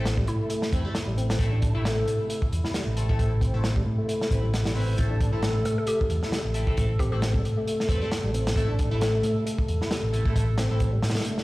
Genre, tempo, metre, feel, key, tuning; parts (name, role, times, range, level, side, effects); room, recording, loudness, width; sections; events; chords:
breakbeat, breaks; 134 BPM; 4/4; swing 56% on 16ths; A minor; A4 = 440 Hz
tonewheel organ; sustained chords; 0.0-11.4 s; C3 to A4; -33 LUFS; equal; overdrive, chorus vibrato, slow rotary speaker, sidechain pumping
tonewheel organ; riff; 0.0-11.4 s; G3 to E4; -32 LUFS; left 1 dB; overdrive, chorus vibrato, slow rotary speaker, digital delay
band-passed chord stab; stabs; 0.0-10.8 s; A3 to B4; -36 LUFS; left 2 dB; phaser, lush chorus, digital delay
hollow-body short-scale picked electric bass; bass; 0.0-11.1 s; A1 to A2; -26 LUFS; equal
downlifter; sound effects; 0.2-1.4 s; barely audible
crunchy breakbeat drum kit; drums; 0.1-11.4 s; hi-hat, kick drum, snare drum; -27 LUFS; equal
mallet-like synth pluck; melody; 0.3-0.9, 5.7-7.2 s; E4 to A4; -34 LUFS; left 1 dB; chorus, telephone sound, digital delay
moderate studio reverb, RT60 0.6 s; played on a big sound system in a bare room, stone room reverb; -23 LUFS; side -19 dB against mid
0.0-11.4 A section
0.0 Am